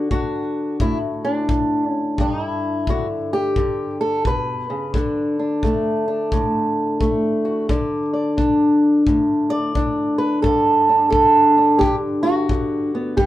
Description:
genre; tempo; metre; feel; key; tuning
acoustic country blues, solo or duo; 87 BPM; 4/4; swing 64% on 8ths; D major; A4 = 442 Hz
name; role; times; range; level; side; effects
fingerpicked old ladder-braced acoustic guitar; melody; 0.0-13.3 s; G2 to D5; -17 LUFS; equal; none
kick drum; drums; 0.1-13.3 s; none; -24 LUFS; left 1 dB; none
room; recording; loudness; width
light reverb; band playing live in one room; -17 LUFS; side -14 dB against mid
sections
0.0-13.3 A section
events
none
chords
0.0 D; 2.2 G; 4.9 D5; 10.4 G5

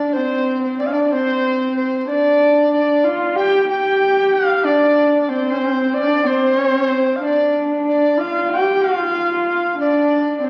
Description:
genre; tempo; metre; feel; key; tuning
mongolian traditional, Mongolian folk; 93 BPM; 4/4; straight; unclear; A4 = 439 Hz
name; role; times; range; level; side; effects
dark horsehead fiddle; melody; 0.0-10.5 s; C4 to G4; -20 LUFS; equal; none
dizi; second line; 0.0-10.5 s; C5 to G5; -20 LUFS; equal; none
room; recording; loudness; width
wet large studio reverb, RT60 1.3 s; very old 78 rpm record, vinyl crackle; -17 LUFS; mono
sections
0.0-10.5 A section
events
none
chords
none

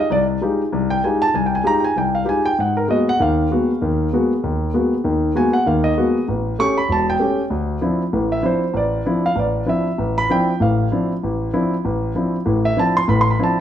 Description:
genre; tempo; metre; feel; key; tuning
jazz; 194 BPM; 4/4; swing 61% on 8ths; D dorian from 7.5 s; A4 = 440 Hz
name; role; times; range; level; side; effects
warm concert grand piano; solo; 0.0-13.6 s; E1 to C#6; -16 LUFS; equal; none
room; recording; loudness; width
moderate large studio reverb, RT60 0.9 s; heard from further back in the room; -16 LUFS; side -10 dB against mid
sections
0.0-7.5 A section; 7.5-13.6 A section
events
none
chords
0.0 Fm9; 2.6 Abm9; 6.3 A7; 7.5 Dm9

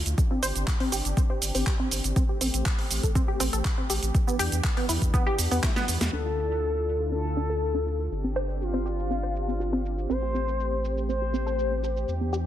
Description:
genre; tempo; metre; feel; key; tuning
progressive house; 121 BPM; 4/4; straight; D dorian; A4 = 442 Hz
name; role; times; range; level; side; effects
warm analog pad; sustained chords; 0.0-12.5 s; D3 to G4; -36 LUFS; equal; chorus, sidechain pumping
saturated sub bass; bass; 0.0-12.5 s; G1 to E2; -29 LUFS; equal; sidechain pumping
house drum kit; drums; 0.1-12.4 s; handclaps, hi-hat, shaker, snare drum; -30 LUFS; right 2 dB; low-pass filter on hats, low-pass filter on snare, low-pass filter on perc, low-pass filter on room
electronic kick drum; drums; 0.2-5.7 s; none; -25 LUFS; equal; overdrive
tight sequenced synth; arpeggios; 0.3-12.4 s; B3 to C5; -31 LUFS; equal; chorus, cassette tape, sidechain pumping, ping-pong delay
expressive portamento lead; melody; 6.1-12.0 s; F4 to C5; -30 LUFS; left 2 dB; lush chorus, ping-pong delay
room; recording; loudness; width
light reverb; dense, heavily limited modern master; -24 LUFS; side -11 dB against mid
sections
0.0-6.1 A section; 6.1-12.5 B section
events
drum fill 5.6-6.1; filter sweep on drum 6.1-12.5; filter sweep on synth arpeggio sound 6.1-12.5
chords
0.2 Gsus4; 2.2 Am7; 4.1 Em7; 6.1 Dmadd9; 8.1 Gsus4; 10.1 Am7

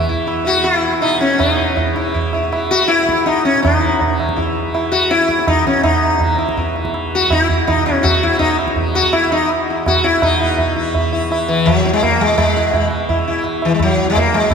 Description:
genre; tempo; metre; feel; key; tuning
indian classical, Hindustani; 164 BPM; 3/4; straight; E raga yaman; A4 = 439 Hz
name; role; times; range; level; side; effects
sitar; melody; 0.0-14.5 s; E3 to F#4; -15 LUFS; left 2 dB; none
tanpura; drone; 0.0-14.5 s; E2 to E3; -24 LUFS; right 1 dB; none
tabla; percussion; 0.3-14.5 s; none; -19 LUFS; right 3 dB; none
room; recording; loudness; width
wet church reverb, RT60 3.0 s; recorded in a church or concert hall; -13 LUFS; side -6 dB against mid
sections
0.0-1.4 A section; 1.4-10.2 B section; 10.2-14.5 A section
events
speeding up 0.0-14.5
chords
none

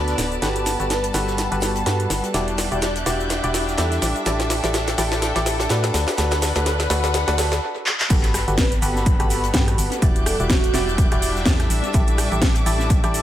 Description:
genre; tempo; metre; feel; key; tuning
piano house; 125 BPM; 4/4; swing 57% on 16ths; unclear; A4 = 440 Hz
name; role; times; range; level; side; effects
dark symphonic violin section; sustained chords; 0.0-13.2 s; G3 to G6; -32 LUFS; left 1 dB; sidechain pumping
barking FM electric piano; riff; 0.0-13.2 s; D4 to D5; -25 LUFS; equal; chorus, cassette tape, sidechain pumping, dub echo
organ-like FM bass; bass; 0.0-13.2 s; D1 to A2; -25 LUFS; equal; tube saturation, sidechain pumping
rich studio string section; texture; 0.0-13.2 s; G3 to A5; -28 LUFS; left 1 dB; sidechain pumping
deep reggae drum kit; drums; 0.1-13.2 s; hi-hat, shaker, snare drum; -35 LUFS; equal; none
house drum kit; drums; 0.1-13.2 s; crash cymbal, handclaps, hi-hat, rim click, shaker, snare drum; -24 LUFS; equal; high-pass filter on hats, small room ambience, high-pass filter on perc, high-pass filter on snare, high-pass filter on cymbals, dub echo
breathy flute-like synth lead; melody; 0.9-2.9, 8.6-10.9 s; F#4 to D5; -32 LUFS; right 3 dB; none
electronic kick drum; drums; 8.1-13.0 s; none; -19 LUFS; equal; small room ambience
room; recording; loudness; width
light reverb, studio ambience; echo-heavy mix; -18 LUFS; side -12 dB against mid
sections
0.0-8.1 A section; 8.1-13.2 B section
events
build-up 0.0-8.1; drum fill 0.0-7.6, 7.9; break 7.6-8.1; drop 8.1-13.2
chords
0.4 Gmaj9; 2.3 Em9; 4.0 A7sus4; 5.9 D6; 8.1 Gmaj9; 10.0 Em9; 11.7 A7sus4

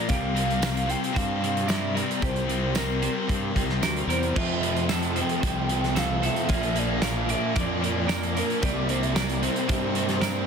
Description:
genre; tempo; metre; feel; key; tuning
rock, shoegaze and dream pop; 113 BPM; 4/4; straight; C mixolydian; A4 = 440 Hz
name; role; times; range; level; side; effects
hollow clarinet-like synth lead; melody; 0.0-10.5 s; Bb4 to G5; -32 LUFS; right 1 dB; chorus, tape echo
ethereal airy pad; sustained chords; 0.0-10.5 s; F4 to D6; -38 LUFS; right 1 dB; ensemble chorus, built-in reverb
semi-hollow electric guitar; arpeggios; 0.0-10.5 s; F4 to D5; -36 LUFS; right 3 dB; lush chorus, tape echo
overdriven electric guitar; riff; 0.0-10.5 s; F2 to C4; -31 LUFS; left 1 dB; none
thick fuzz guitar; riff; 0.0-10.5 s; F2 to C4; -30 LUFS; left 13 dB; distortion, wide subtle chorus
fuzz fingered electric bass; bass; 0.1-10.5 s; Bb1 to G2; -29 LUFS; equal; overdrive
loose indie drum kit; drums; 0.1-10.3 s; crash cymbal, hi-hat, kick drum, snare drum; -30 LUFS; right 1 dB; none
tambourine; percussion; 0.6-10.4 s; none; -40 LUFS; right 16 dB; none
biting overdriven guitar; riff; 4.4-10.5 s; F2 to E4; -30 LUFS; right 15 dB; reverse reverb
room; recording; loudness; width
small room ambience; dense, heavily limited modern master; -23 LUFS; side -6 dB against mid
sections
0.0-10.5 A section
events
none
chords
0.1 C7sus4; 4.4 Fmaj7; 6.5 Bb; 8.6 C7(no3)

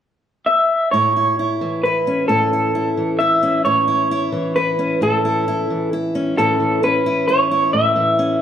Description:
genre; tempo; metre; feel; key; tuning
indie folk with a building arrangement; 132 BPM; 3/4; straight; A major; A4 = 441 Hz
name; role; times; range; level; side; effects
electric guitar through a small old amp; melody; 0.5-8.4 s; A4 to E5; -16 LUFS; equal; harmonic tremolo
fingerpicked steel-string acoustic guitar; accompaniment; 0.9-8.4 s; A2 to E4; -21 LUFS; left 1 dB; none
room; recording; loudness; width
moderate large studio reverb, RT60 0.9 s; none; -15 LUFS; side -9 dB against mid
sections
0.9-6.4 A section; 6.4-8.4 B section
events
none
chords
0.0 N.C.; 0.9 A; 6.4 Aadd9

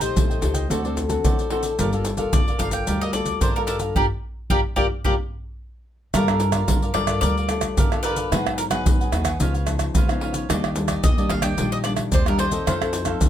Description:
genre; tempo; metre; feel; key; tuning
samba and choro; 110 BPM; 4/4; straight; G minor; A4 = 442 Hz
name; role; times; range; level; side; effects
bowl-back mandolin; melody; 0.0-13.3 s; G4 to G5; -27 LUFS; equal; none
cavaquinho; accompaniment; 0.0-13.3 s; D4 to G5; -30 LUFS; right 4 dB; none
nylon-string guitar; accompaniment; 0.0-13.3 s; Ab2 to C5; -26 LUFS; left 3 dB; none
upright bass; bass; 0.0-13.3 s; G1 to D3; -26 LUFS; equal; none
maracas, surdo, pandeiro and tamborim; percussion; 0.0-13.3 s; none; -23 LUFS; right 1 dB; none
room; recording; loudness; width
light reverb; close, detailed microphones; -19 LUFS; side -10 dB against mid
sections
0.0-6.1 A section; 6.1-13.3 A section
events
band accent 4.0-6.1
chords
0.0 Am7b5; 0.7 D7; 1.8 Gm9; 8.3 Abm7; 9.4 C#9; 10.5 Ebmaj7; 12.7 F7

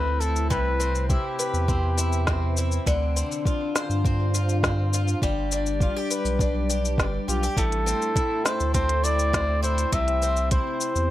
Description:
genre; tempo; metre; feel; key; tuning
folktronica; 102 BPM; 4/4; straight; unclear; A4 = 440 Hz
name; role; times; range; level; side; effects
warm flugelhorn; melody; 0.0-2.5, 7.3-11.1 s; G4 to E5; -26 LUFS; equal; tape echo, plate reverb
warbly tape-like pad; sustained chords; 0.0-11.1 s; C3 to G5; -33 LUFS; left 2 dB; chorus, built-in reverb
picked twelve-string acoustic guitar; arpeggios; 0.0-11.1 s; A2 to C5; -30 LUFS; left 1 dB; tape echo, plate reverb
warm sub bass; bass; 0.0-11.1 s; G1 to G2; -25 LUFS; equal; none
organic electronic drum kit; drums; 0.2-11.1 s; cabasa, hi-hat, snare drum; -28 LUFS; left 1 dB; none
electronic kick drum; drums; 0.5-10.6 s; none; -26 LUFS; equal; none
room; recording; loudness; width
light reverb; none; -22 LUFS; side -14 dB against mid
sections
0.0-11.1 A section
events
none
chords
0.0 Am; 0.5 Cmaj7; 2.9 Dm7; 5.2 G; 7.6 Am7; 9.9 C

